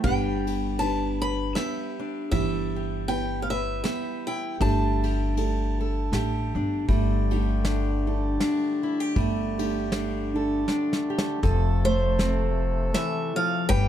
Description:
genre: acoustic folk duo or small band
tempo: 79 BPM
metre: 3/4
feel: swing 56% on 8ths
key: unclear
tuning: A4 = 440 Hz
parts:
  - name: picked old ladder-braced acoustic guitar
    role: melody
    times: 0.0-6.5, 11.8-13.9 s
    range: C5 to B5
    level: -29 LUFS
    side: right 1 dB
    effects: none
  - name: fingerpicked steel-string acoustic guitar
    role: accompaniment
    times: 0.0-13.9 s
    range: E3 to B4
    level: -29 LUFS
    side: left 2 dB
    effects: none
  - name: dark upright piano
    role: arpeggios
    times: 0.0-11.5 s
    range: E3 to G4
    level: -31 LUFS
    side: right 6 dB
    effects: none
  - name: upright bass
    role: bass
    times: 0.0-13.9 s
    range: F1 to A1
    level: -27 LUFS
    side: equal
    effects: none
  - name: soft brush drum kit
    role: drums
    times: 0.0-13.9 s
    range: hi-hat, kick drum, ride cymbal, snare drum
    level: -31 LUFS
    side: equal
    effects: none
  - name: hand-pumped harmonium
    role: sustained chords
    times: 6.9-13.9 s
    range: C3 to A4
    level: -35 LUFS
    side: left 3 dB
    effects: none
room: light reverb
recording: dark, warm production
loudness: -23 LUFS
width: side -10 dB against mid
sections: 0.0-6.9 A section; 6.9-11.4 B section; 11.4-13.9 C section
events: drum fill 10.7-11.4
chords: 0.0 G; 4.6 Gsus2; 11.4 F

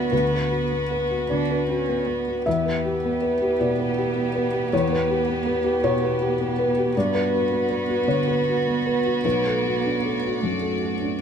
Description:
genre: neoclassical piano and strings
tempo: 53 BPM (dotted quarters)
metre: 6/8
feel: uneven beats, rubato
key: B minor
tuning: A4 = 435 Hz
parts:
  - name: dark cello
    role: second line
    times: 0.0-11.2 s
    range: A3 to D4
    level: -28 LUFS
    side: right 8 dB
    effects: none
  - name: felt-muted upright piano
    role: accompaniment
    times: 0.0-11.2 s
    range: B1 to E5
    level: -22 LUFS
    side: left 2 dB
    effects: none
  - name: rich chamber string section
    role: sustained chords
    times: 0.0-11.2 s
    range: A3 to D5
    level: -30 LUFS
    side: equal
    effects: none
room: moderate large studio reverb, RT60 1.1 s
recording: minimal, uncompressed stereo recording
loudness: -20 LUFS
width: side -7 dB against mid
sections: 0.0-11.2 A section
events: none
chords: 0.0 Bm/D; 2.5 Em; 6.9 Gmaj7; 9.2 Bm7

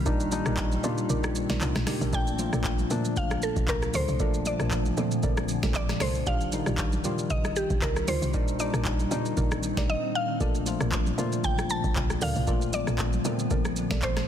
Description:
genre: amapiano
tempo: 116 BPM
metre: 4/4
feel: swing 55% on 16ths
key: Bb major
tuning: A4 = 440 Hz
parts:
  - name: tine electric piano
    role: accompaniment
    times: 0.0-14.3 s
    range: Bb2 to Bb4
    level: -31 LUFS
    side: left 4 dB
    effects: none
  - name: granular cloud pad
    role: sustained chords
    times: 0.0-14.3 s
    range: Bb2 to D5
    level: -35 LUFS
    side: right 2 dB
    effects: built-in reverb, sidechain pumping
  - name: woody log drum bass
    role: bass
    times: 0.0-14.2 s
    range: Bb1 to Bb2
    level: -31 LUFS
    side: right 1 dB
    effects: none
  - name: soft round pluck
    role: stabs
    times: 0.1-14.0 s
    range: Eb4 to D5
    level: -38 LUFS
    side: right 4 dB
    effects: chorus, ping-pong delay
  - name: booming analog drum machine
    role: drums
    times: 0.1-14.3 s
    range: handclaps, hi-hat, kick drum, rim click, shaker, snare drum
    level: -29 LUFS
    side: equal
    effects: none
  - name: congas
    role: percussion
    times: 0.3-14.0 s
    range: none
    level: -39 LUFS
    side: right 3 dB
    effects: none
  - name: mallet-like synth pluck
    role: melody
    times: 2.1-14.3 s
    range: G4 to A5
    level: -32 LUFS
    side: equal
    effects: chorus, ping-pong delay
room: light reverb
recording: dense, heavily limited modern master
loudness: -24 LUFS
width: side -9 dB against mid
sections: 0.0-14.3 A section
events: kick muted 1.1-2.1; silent gap 9.9-10.4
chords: 0.0 Ebmaj9/Bb; 2.1 Bbmaj7; 6.3 Ebmaj9/Bb; 8.3 Cm9/Bb; 10.4 Bbmaj7

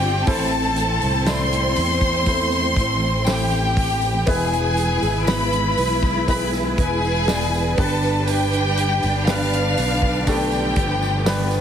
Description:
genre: pop ballad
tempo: 60 BPM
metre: 4/4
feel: straight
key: A minor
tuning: A4 = 444 Hz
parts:
  - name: rich studio violin section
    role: melody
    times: 0.0-11.6 s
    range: G4 to F6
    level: -22 LUFS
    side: left 1 dB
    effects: none
  - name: dark studio cello section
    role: second line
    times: 0.0-11.6 s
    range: B3 to F4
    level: -29 LUFS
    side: left 2 dB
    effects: none
  - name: warm concert grand piano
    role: accompaniment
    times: 0.0-11.6 s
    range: G2 to D5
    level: -26 LUFS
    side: equal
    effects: none
  - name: warm studio string section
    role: sustained chords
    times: 0.0-11.6 s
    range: D3 to B4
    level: -28 LUFS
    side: right 3 dB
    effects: none
  - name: fretless electric bass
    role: bass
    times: 0.0-11.6 s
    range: E1 to E2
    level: -24 LUFS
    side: equal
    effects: ensemble chorus
  - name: tambourine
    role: percussion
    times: 0.0-11.6 s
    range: none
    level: -39 LUFS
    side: right 9 dB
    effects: none
  - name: loose indie drum kit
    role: drums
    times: 0.3-11.5 s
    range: hi-hat, kick drum, snare drum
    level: -25 LUFS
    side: equal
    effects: none
room: light reverb, small room ambience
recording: heavily compressed radio sound, multiband compression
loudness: -17 LUFS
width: side -8 dB against mid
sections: 0.0-11.6 A section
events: none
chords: 0.3 Am; 4.3 E; 7.8 G

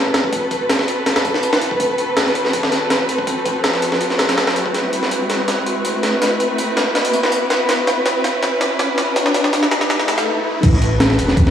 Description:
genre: drum and bass, jungle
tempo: 163 BPM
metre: 4/4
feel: straight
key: A dorian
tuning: A4 = 440 Hz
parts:
  - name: warm studio string section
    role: sustained chords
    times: 0.0-11.5 s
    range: C4 to B4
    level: -19 LUFS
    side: equal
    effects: none
  - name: soft dub sub bass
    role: bass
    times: 0.0-11.5 s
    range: D1 to D2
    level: -22 LUFS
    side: equal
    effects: high-pass filter
  - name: riser and swell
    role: sound effects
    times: 0.7-10.6 s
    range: none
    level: -25 LUFS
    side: left 1 dB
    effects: none
  - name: breakbeat sampler-style drum kit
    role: drums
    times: 0.1-11.5 s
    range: crash cymbal, hi-hat, kick drum, snare drum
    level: -18 LUFS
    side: equal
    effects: high-pass filter on kick, studio reverb, high-pass filter on hats, high-pass filter on snare, high-pass filter on cymbals
room: wet lush hall reverb, RT60 2.0 s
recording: played on a big sound system in a bare room, large studio reverb, vinyl crackle, high-pass filter, small room ambience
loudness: -15 LUFS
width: side -9 dB against mid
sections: 0.0-10.6 A section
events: build-up 0.0-10.6; riser 0.7-10.6; drum fill 4.7-10.3; swell 9.9-10.6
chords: 0.0 Am69; 4.7 D13; 10.6 Am69

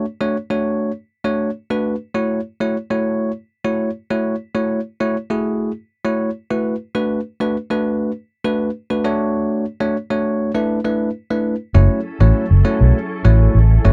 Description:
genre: pop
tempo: 100 BPM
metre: 4/4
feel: straight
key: F# minor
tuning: A4 = 440 Hz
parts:
  - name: bell-like tine electric piano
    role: accompaniment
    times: 0.0-13.9 s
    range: A3 to C#5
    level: -21 LUFS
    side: equal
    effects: none
  - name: glassy FM pad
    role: sustained chords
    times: 11.7-13.9 s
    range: F#3 to A4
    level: -30 LUFS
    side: equal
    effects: ensemble chorus, built-in reverb
  - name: vintage muted fingered electric bass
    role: bass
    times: 11.7-13.9 s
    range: F#1 to B1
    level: -13 LUFS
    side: equal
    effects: none
room: light reverb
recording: dry, close 1970s-style studio recording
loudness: -19 LUFS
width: mono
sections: 0.0-11.7 A section; 11.7-13.9 B section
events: none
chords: 0.0 Dmaj7; 2.1 F#m7; 6.9 Bm7; 9.0 Dmaj7; 10.5 E7sus4; 11.7 F#m7

